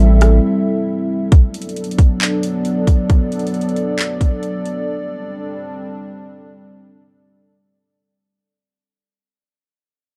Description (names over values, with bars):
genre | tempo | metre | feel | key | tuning
hip hop, atmospheric cloud-rap | 135 BPM | 4/4 | half-time | unclear | A4 = 441 Hz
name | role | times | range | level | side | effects
dark analog pad | sustained chords | 0.0-8.4 s | F#3 to E5 | -22 LUFS | equal | chorus, sidechain pumping
trap drum kit | drums | 0.2-4.8 s | handclaps, hi-hat, kick drum, rim click | -15 LUFS | equal | none
room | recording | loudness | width
little or no reverb | dark, warm production | -17 LUFS | mono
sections
0.0-1.3 A section; 1.3-8.4 B section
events
break 0.4-1.3; fade-out 1.3-8.4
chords
0.0 Am7; 1.3 Bm7; 4.9 D7sus4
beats
0.43 0.87 | 1.32 1.76 2.21 2.65 | 3.10 3.54 3.98 4.43 | 4.87 5.32 5.76 6.21 | 6.65 7.10 7.54 7.99